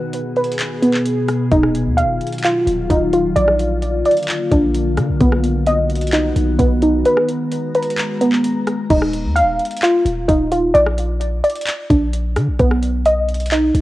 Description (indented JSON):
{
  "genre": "hip hop, trap",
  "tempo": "130 BPM",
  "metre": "4/4",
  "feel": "half-time",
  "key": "Eb harmonic minor",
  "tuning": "A4 = 440 Hz",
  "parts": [
    { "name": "glassy FM pad", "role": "sustained chords", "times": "0.0-8.9 s", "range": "Cb3 to Bb5", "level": "-22 LUFS", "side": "left 2 dB", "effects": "ensemble chorus, built-in reverb, cassette tape" },
    { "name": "warbly dusty pluck", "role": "arpeggios", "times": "0.0-13.8 s", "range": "Cb4 to F5", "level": "-17 LUFS", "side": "right 1 dB", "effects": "chorus, low-pass filter, cassette tape, tape echo" },
    { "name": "trap drum kit", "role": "drums", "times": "0.1-13.8 s", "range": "crash cymbal, handclaps, hi-hat, kick drum, rim click", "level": "-22 LUFS", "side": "equal", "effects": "none" },
    { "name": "warm 808-style bass", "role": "bass", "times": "1.5-13.8 s", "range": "Eb1 to D3", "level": "-20 LUFS", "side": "equal", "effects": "none" }
  ],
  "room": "little or no reverb",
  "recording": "home recording on cassette",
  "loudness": "-14 LUFS",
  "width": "side -16 dB against mid",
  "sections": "0.0-8.9 A section; 8.9-13.8 B section",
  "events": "break 0.0-1.5, 7.1-8.9",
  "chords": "0.0 Abm; 1.5 Ebmadd9; 3.4 Bb; 5.2 B; 7.1 Abmadd9; 8.9 Ebsus2; 10.7 Bb; 12.6 B"
}